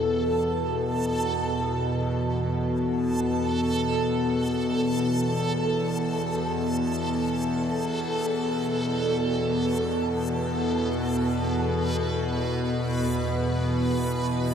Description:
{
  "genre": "dark ambient drone",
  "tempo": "free time",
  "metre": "none",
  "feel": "none",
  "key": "unclear",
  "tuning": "A4 = 440 Hz",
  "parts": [
    { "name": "bowed-like drone", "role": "drone", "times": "0.0-14.5 s", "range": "E2 to B2", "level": "-25 LUFS", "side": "equal", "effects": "built-in reverb" },
    { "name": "backwards swelling texture", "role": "texture", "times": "0.0-14.5 s", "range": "A4 to B4", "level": "-29 LUFS", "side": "right 1 dB", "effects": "built-in reverb" }
  ],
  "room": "wet huge ambient reverb, RT60 6.9 s",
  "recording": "none",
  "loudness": "-24 LUFS",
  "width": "side -8 dB against mid",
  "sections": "0.0-14.5 A section",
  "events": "none",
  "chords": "0.0 E5"
}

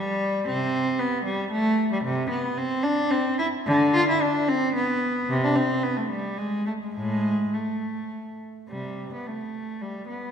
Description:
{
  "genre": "classical, baroque-style suite movement for unaccompanied cello",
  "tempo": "102-118 BPM",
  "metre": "3/4",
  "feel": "rubato",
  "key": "A minor",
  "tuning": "A4 = 440 Hz",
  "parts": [
    { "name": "warm cello", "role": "solo", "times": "0.0-10.3 s", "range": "A2 to F4", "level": "-23 LUFS", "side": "equal", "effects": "none" }
  ],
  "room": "wet concert hall reverb, RT60 1.8 s",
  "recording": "minimal, uncompressed stereo recording",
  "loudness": "-22 LUFS",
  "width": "side -7 dB against mid",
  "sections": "0.0-8.7 A section; 8.7-10.3 A section",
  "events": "none",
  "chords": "none"
}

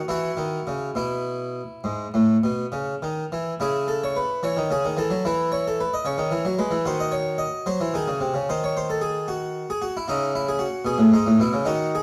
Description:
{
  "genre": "classical, baroque-style suite movement for harpsichord",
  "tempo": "66-76 BPM (dotted quarters)",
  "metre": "12/8",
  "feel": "rubato",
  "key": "E major, C# minor from 3.6 s",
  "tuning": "A4 = 441 Hz",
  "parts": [
    { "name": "harpsichord", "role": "solo", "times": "0.0-12.0 s", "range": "G#2 to D#5", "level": "-24 LUFS", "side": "equal", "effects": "none" }
  ],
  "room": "moderate recital hall reverb, RT60 1.3 s",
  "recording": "close, detailed microphones, vinyl crackle",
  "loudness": "-24 LUFS",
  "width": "mono",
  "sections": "0.0-3.6 A section; 3.6-12.0 A section",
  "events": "none",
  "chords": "0.1 E; 3.6 C#m; 6.8 G#7; 10.1 C#m"
}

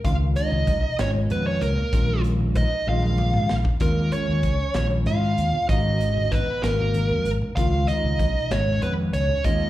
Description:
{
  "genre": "electric jazz fusion",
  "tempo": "64 BPM (dotted quarters)",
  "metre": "6/8",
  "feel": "straight",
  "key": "unclear",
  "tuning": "A4 = 440 Hz",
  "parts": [
    { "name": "bell-like tine electric piano", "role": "accompaniment", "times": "0.0-9.7 s", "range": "Eb3 to Ab4", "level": "-29 LUFS", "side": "left 1 dB", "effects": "medium stereo tremolo" },
    { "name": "fretless electric bass", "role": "bass", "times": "0.0-9.7 s", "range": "Ab1 to Ab2", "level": "-23 LUFS", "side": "equal", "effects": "none" },
    { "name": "modern studio drum kit", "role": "drums", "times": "0.0-9.6 s", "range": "hi-hat, kick drum, snare drum, toms", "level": "-27 LUFS", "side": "equal", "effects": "none" },
    { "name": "congas", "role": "percussion", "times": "0.0-9.6 s", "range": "none", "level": "-32 LUFS", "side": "left 1 dB", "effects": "none" },
    { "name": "dark smooth lead guitar", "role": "melody", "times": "0.1-9.7 s", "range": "Bb4 to F5", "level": "-26 LUFS", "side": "right 2 dB", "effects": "overdrive, slapback echo, analog delay" },
    { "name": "growling trombone", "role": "second line", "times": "0.1-9.7 s", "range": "Bb3 to F4", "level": "-33 LUFS", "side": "left 2 dB", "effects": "slapback echo, analog delay" }
  ],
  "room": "light reverb",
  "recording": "live gig heard through the venue's PA, club reverb",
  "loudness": "-20 LUFS",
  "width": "side -15 dB against mid",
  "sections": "0.0-9.7 A section",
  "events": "drum fill 2.9-3.8",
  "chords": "0.0 Dbadd9; 1.9 Bb7sus4; 5.7 Absus2; 7.6 Dbadd9"
}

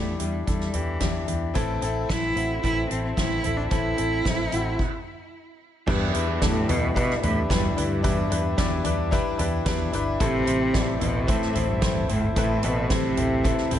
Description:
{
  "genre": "piano-driven pop",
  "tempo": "111 BPM",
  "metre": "4/4",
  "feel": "straight",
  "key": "E minor",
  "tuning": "A4 = 441 Hz",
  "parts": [
    { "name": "rich cello", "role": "melody", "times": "0.0-13.8 s", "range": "E2 to E4", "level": "-27 LUFS", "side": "right 1 dB", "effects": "none" },
    { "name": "bright upright piano", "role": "accompaniment", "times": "0.0-13.8 s", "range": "A2 to D5", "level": "-29 LUFS", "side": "left 6 dB", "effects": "none" },
    { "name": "vintage muted fingered electric bass", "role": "bass", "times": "0.0-13.8 s", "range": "G1 to E2", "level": "-29 LUFS", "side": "equal", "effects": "none" },
    { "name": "soft-mallet drum kit", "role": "drums", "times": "0.2-13.8 s", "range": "crash cymbal, hi-hat, kick drum, snare drum, toms", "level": "-27 LUFS", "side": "equal", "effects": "none" },
    { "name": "direct-recorded clean electric guitar", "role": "riff", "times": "1.6-13.8 s", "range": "E2 to E4", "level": "-32 LUFS", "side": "right 6 dB", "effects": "none" }
  ],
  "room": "light reverb",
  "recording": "nothing above 11.0 kHz",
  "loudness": "-22 LUFS",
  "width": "side -10 dB against mid",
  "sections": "0.0-5.9 A section; 5.9-13.8 B section",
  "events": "stop 4.8-5.9",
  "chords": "0.0 Em7; 1.6 Am; 5.9 Em7; 10.2 Am"
}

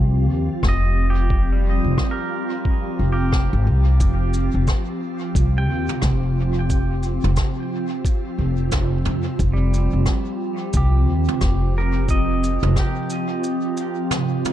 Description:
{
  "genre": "ambient dub",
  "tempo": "89 BPM",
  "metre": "4/4",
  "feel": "swing 60% on 16ths",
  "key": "unclear",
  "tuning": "A4 = 440 Hz",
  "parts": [
    { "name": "soft additive organ-like pad", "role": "sustained chords", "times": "0.0-14.5 s", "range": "F3 to G4", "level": "-25 LUFS", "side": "right 1 dB", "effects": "ensemble chorus, built-in reverb" },
    { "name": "upright bass", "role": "bass", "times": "0.0-12.7 s", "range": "F1 to F2", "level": "-19 LUFS", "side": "equal", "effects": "none" },
    { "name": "electronic kick drum", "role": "drums", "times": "0.6-12.9 s", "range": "none", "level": "-21 LUFS", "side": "equal", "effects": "none" },
    { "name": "jazz brush drum kit", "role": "drums", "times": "0.6-14.5 s", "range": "rim click, shaker, toms", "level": "-28 LUFS", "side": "right 2 dB", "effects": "dub echo" },
    { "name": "pedal steel guitar", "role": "arpeggios", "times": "0.7-14.2 s", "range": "G3 to G5", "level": "-30 LUFS", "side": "right 2 dB", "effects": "tape echo" }
  ],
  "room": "small room ambience",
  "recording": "dark, warm production",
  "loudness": "-18 LUFS",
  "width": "side -12 dB against mid",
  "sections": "0.0-14.5 A section",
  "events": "break 13.4-14.5",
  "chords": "0.0 F7(no3)"
}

